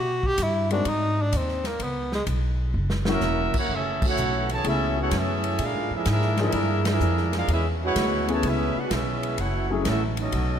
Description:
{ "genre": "jazz, big band swing", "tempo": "127 BPM", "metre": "4/4", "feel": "swing 69% on 8ths", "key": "F# minor from 3.7 s", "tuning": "A4 = 440 Hz", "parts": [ { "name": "breathy tenor saxophone", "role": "melody", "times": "0.0-2.2 s", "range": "G#3 to G4", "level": "-26 LUFS", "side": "equal", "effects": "none" }, { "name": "upright bass", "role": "bass", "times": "0.0-10.6 s", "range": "E1 to B2", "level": "-26 LUFS", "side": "equal", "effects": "none" }, { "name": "swinging big-band drum kit", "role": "drums", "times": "0.2-10.5 s", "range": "crash cymbal, hi-hat, kick drum, ride cymbal, snare drum", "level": "-31 LUFS", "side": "equal", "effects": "none" }, { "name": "warm grand piano", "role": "accompaniment", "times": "0.7-9.9 s", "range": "E#3 to G#4", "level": "-30 LUFS", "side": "left 4 dB", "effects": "none" }, { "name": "clear trumpet section", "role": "melody", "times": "3.1-10.6 s", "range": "C#4 to A5", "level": "-28 LUFS", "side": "right 1 dB", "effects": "none" }, { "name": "warm trombone section", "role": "second line", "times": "3.1-10.6 s", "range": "C#3 to F#4", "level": "-30 LUFS", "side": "right 4 dB", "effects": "none" }, { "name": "brilliant trombone section", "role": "sustained chords", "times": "3.7-10.6 s", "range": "B2 to G#4", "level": "-36 LUFS", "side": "left 1 dB", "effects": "none" } ], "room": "moderate concert hall reverb, RT60 2.0 s", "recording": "none", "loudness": "-22 LUFS", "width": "side -8 dB against mid", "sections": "0.0-3.7 A section; 3.7-10.6 B section", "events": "tenor saxophone solo 0.0-3.7; drum fill 2.7-3.2; band accent 3.9, 6.8", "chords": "0.0 B5; 0.9 G#5; 1.8 G#madd11 (rootless); 2.7 F#7; 3.7 F#m11; 5.6 A#7#11; 7.5 Amaj9; 9.4 F#m7", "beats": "0.38 0.85 1.33 | 1.80 2.27 2.75 3.22 | 3.69 4.17 4.64 5.12 | 5.59 6.06 6.54 7.01 | 7.49 7.96 8.44 8.91 | 9.39 9.86 10.34" }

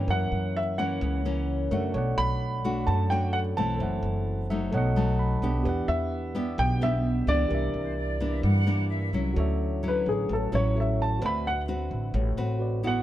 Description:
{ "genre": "bossa nova", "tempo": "129 BPM", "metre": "4/4", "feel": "straight", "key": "D major", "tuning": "A4 = 441 Hz", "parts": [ { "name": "warm baby grand piano", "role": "melody", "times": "0.0-13.0 s", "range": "G#4 to B5", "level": "-30 LUFS", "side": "equal", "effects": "none" }, { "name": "nylon-string guitar", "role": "accompaniment", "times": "0.0-13.0 s", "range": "F#2 to B4", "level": "-30 LUFS", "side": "left 1 dB", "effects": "none" }, { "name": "tine electric piano", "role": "accompaniment", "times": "0.0-13.0 s", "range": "F#4 to F#6", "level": "-35 LUFS", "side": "right 3 dB", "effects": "none" }, { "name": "upright bass", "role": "bass", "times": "0.0-13.0 s", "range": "F#1 to G2", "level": "-28 LUFS", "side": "equal", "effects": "none" }, { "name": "breathy bright flute section", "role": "second line", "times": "7.7-9.3 s", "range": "Bb4 to F#5", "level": "-36 LUFS", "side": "right 1 dB", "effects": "none" } ], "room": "little or no reverb", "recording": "dark, warm production", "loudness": "-24 LUFS", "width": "side -13 dB against mid", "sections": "0.0-9.4 A section; 9.4-13.0 B section", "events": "tine electric piano fill 4.3-5.7; grand piano solo 9.4-13.0", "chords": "0.1 F#7; 1.9 Bm7; 3.8 F#m7b5; 4.7 B7; 5.7 Em7; 7.5 C9; 9.4 Dmaj9; 11.2 D13", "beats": "| 0.09 0.56 1.02 1.48 | 1.95 2.41 2.87 3.34 | 3.80 4.26 4.73 5.19 | 5.66 6.12 6.58 7.04 | 7.51 7.97 8.44 8.90 | 9.36 9.83 10.29 10.75 | 11.22 11.68 12.15 12.61" }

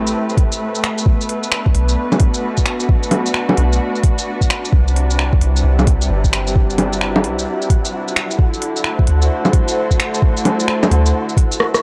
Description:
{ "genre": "future garage", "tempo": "131 BPM", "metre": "4/4", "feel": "swing 63% on 16ths", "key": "unclear", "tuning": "A4 = 437 Hz", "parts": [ { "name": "muted studio string section", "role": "sustained chords", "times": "0.0-11.8 s", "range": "A2 to C5", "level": "-23 LUFS", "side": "equal", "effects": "sidechain pumping" }, { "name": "soft 808-style bass", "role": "bass", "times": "0.0-11.1 s", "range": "G1 to D2", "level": "-18 LUFS", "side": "equal", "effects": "sidechain pumping" }, { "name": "organic electronic drum kit", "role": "drums", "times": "0.1-11.8 s", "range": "bongos, finger snaps, hi-hat, rim click, shaker", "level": "-21 LUFS", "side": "equal", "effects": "none" }, { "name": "electronic kick drum", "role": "drums", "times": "0.4-11.5 s", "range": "none", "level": "-16 LUFS", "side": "equal", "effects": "none" }, { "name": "flickering grainy texture", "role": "texture", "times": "5.5-11.8 s", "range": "F#4 to F#5", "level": "-33 LUFS", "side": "equal", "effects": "built-in reverb" } ], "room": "light reverb", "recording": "dry, gritty hardware recording, cassette tape", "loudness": "-16 LUFS", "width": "mono", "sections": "0.0-11.8 A section", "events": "kick drops out 11.6; drum fill 11.6", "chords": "0.0 Am9; 1.1 Bm7; 4.7 Cmaj9; 8.4 D9", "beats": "0.14 0.60 | 1.06 1.52 1.98 2.43 | 2.89 3.35 3.81 4.27 | 4.72 5.18 5.64 6.10 | 6.56 7.01 7.47 7.93 | 8.39 8.85 9.30 9.76 | 10.22 10.68 11.14 11.60" }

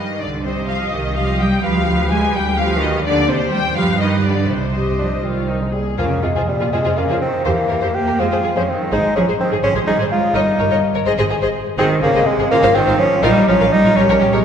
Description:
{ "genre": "classical, dramatic, fast romantic movement for symphony orchestra", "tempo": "83 BPM (dotted quarters)", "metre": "6/8", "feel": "rubato", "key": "C minor, F minor from 6.0 s", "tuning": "A4 = 440 Hz", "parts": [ { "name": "rich symphonic violin section", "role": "melody", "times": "0.0-14.4 s", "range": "Ab4 to Ab5", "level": "-27 LUFS", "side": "left 5 dB", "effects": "none" }, { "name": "warm symphonic violin section", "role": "second line", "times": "0.0-14.4 s", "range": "F4 to Ab5", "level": "-24 LUFS", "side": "left 4 dB", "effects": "none" }, { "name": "clear symphonic cello section", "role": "bass", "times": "0.0-14.4 s", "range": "Bb2 to Bb3", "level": "-20 LUFS", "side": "right 2 dB", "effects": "none" }, { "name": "rich symphonic double bass section", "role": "bass", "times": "0.2-14.4 s", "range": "G1 to G2", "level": "-22 LUFS", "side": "right 2 dB", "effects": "none" }, { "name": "rich studio viola section", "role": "accompaniment", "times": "0.4-14.4 s", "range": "Eb4 to Eb5", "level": "-24 LUFS", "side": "equal", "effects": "none" }, { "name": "timpani", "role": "percussion", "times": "4.5-6.7 s", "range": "F2 to C3", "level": "-27 LUFS", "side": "equal", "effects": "none" }, { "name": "clear bassoon", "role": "accompaniment", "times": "5.0-14.4 s", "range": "G3 to G4", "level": "-17 LUFS", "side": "equal", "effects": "none" } ], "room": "wet concert hall reverb, RT60 2.4 s", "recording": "heard from further back in the room", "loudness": "-14 LUFS", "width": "side -8 dB against mid", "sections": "0.0-6.0 A section; 6.0-14.4 B section", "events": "none", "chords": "0.2 Cm; 1.6 G7/D; 3.1 Cm/Eb; 3.8 G; 4.5 Cm; 6.0 Fm; 7.5 C7/E (rootless); 8.2 Fm; 8.9 Ab; 10.3 Eb7/G; 11.1 Ab; 12.5 Fm/Ab; 13.2 Bbm", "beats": "| 0.21 0.93 | 1.64 2.35 | 3.05 3.76 | 4.50 5.24 | 5.99 6.73 | 7.46 8.20 | 8.92 9.63 | 10.35 11.07 | 11.79 12.51 | 13.24 13.96" }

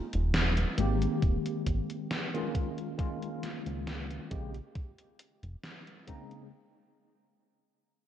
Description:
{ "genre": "vaporwave", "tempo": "68 BPM", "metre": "4/4", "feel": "straight", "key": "unclear", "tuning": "A4 = 440 Hz", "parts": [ { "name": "chorused synth bass", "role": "bass", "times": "0.1-5.6 s", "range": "Eb1 to Db2", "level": "-31 LUFS", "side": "equal", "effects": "none" }, { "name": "gated 80s digital drum machine", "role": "drums", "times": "0.1-6.5 s", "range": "hi-hat, snare drum", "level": "-34 LUFS", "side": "equal", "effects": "gated reverb, gated reverb snare, small room reverb" }, { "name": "tine electric piano", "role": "accompaniment", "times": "0.8-6.5 s", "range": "Db3 to G4", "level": "-35 LUFS", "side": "left 1 dB", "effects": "medium stereo tremolo, lush chorus, tape echo" }, { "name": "electronic kick drum", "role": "drums", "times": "1.2-6.3 s", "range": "none", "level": "-32 LUFS", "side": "equal", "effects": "small room reverb" } ], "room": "digital ambience", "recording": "cassette tape", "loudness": "-29 LUFS", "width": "side -11 dB against mid", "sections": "0.0-6.5 A section", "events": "fade-out 0.0-6.5", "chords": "0.0 N.C.; 0.8 Abmaj7; 2.5 Db6; 4.3 Bbm7", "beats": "0.34 1.22 2.10 | 2.99 3.87 4.75 5.63" }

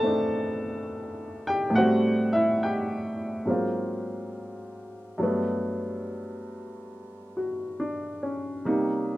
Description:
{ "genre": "solo jazz", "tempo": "70 BPM", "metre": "4/4", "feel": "swing 66% on 8ths", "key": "unclear", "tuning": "A4 = 442 Hz", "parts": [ { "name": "warm upright piano", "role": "solo", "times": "0.0-9.2 s", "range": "G2 to B5", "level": "-26 LUFS", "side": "equal", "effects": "none" } ], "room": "light reverb", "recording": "close, detailed microphones", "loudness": "-25 LUFS", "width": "side -16 dB against mid", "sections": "0.0-9.2 A section", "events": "none", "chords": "0.0 C69; 1.8 Am7; 3.5 G#13; 5.2 Gmaj9; 8.7 Cm7", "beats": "0.03 0.89 | 1.75 2.61 3.48 4.34 | 5.20 6.06 6.93 7.79 | 8.66" }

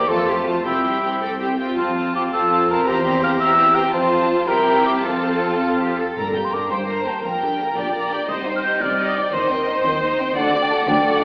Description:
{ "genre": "classical, dramatic, fast romantic movement for symphony orchestra", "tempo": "104-120 BPM (dotted quarters)", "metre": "6/8", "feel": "rubato", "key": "F major, G minor from 6.2 s", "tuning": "A4 = 440 Hz", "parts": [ { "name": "rich symphonic violin section", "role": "melody", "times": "0.0-11.2 s", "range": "D5 to Bb5", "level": "-31 LUFS", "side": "equal", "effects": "none" }, { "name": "mellow cor anglais", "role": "second line", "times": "0.0-6.0 s", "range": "E4 to G5", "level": "-21 LUFS", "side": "equal", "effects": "none" }, { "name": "rich studio violin section", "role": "second line", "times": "0.0-11.2 s", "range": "Bb3 to Eb5", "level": "-28 LUFS", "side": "equal", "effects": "none" }, { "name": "rich symphonic viola section", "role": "accompaniment", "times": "0.0-11.2 s", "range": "A3 to D5", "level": "-26 LUFS", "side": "equal", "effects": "none" }, { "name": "rich symphonic cello section", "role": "bass", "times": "0.0-11.2 s", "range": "G2 to A4", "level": "-29 LUFS", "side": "equal", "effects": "none" }, { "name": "rich symphonic double bass section", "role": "bass", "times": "0.0-11.2 s", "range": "G1 to F2", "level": "-32 LUFS", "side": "equal", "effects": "none" }, { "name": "mellow hollow concert flute", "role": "second line", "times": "6.2-11.2 s", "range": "F#5 to G6", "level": "-26 LUFS", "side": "equal", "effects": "none" }, { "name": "timpani", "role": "percussion", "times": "6.2-6.7 s", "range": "G2", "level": "-42 LUFS", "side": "equal", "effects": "none" } ], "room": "wet recital hall reverb, RT60 1.4 s", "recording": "heard from further back in the room, AM radio sound", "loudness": "-20 LUFS", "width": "mono", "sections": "0.0-6.2 A section; 6.2-11.2 B section", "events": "none", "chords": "0.1 F; 0.6 C; 1.8 F; 2.9 C7/E; 3.9 F; 4.5 C7; 5.0 F; 6.2 Gm; 7.2 Gm/Bb; 8.3 Cm; 9.3 Cm/Eb; 10.4 D", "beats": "0.09 | 0.64 1.21 | 1.78 2.33 | 2.87 3.40 | 3.92 4.47 | 5.04 5.62 | 6.18 6.71 | 7.24 7.77 | 8.29 8.81 | 9.33 9.85 | 10.36 10.87" }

